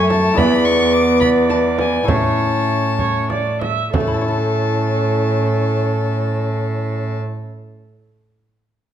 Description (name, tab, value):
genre	classical, renaissance-style consort dance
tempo	62-74 BPM (dotted quarters)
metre	6/8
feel	straight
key	A major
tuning	A4 = 440 Hz
part	rich violin	melody	0.0-7.2 s	G#5 to D6	-24 LUFS	left 5 dB	none
part	rich viola	second line	0.0-7.2 s	A4 to E5	-22 LUFS	right 3 dB	none
part	lute	accompaniment	0.0-7.5 s	E2 to D5	-27 LUFS	left 5 dB	none
part	mellow bassoon	accompaniment	0.0-7.2 s	A3 to C#4	-21 LUFS	left 2 dB	none
part	rich cello	bass	0.0-7.2 s	E2 to A2	-20 LUFS	right 3 dB	none
part	frame drum	percussion	0.1-4.2 s	none	-23 LUFS	right 3 dB	none
room	moderate recital hall reverb, RT60 1.3 s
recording	none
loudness	-15 LUFS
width	side -10 dB against mid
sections	0.0-3.9 A section; 3.9-7.8 B section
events	slowing down 0.0-3.9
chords	0.4 E7; 2.1 A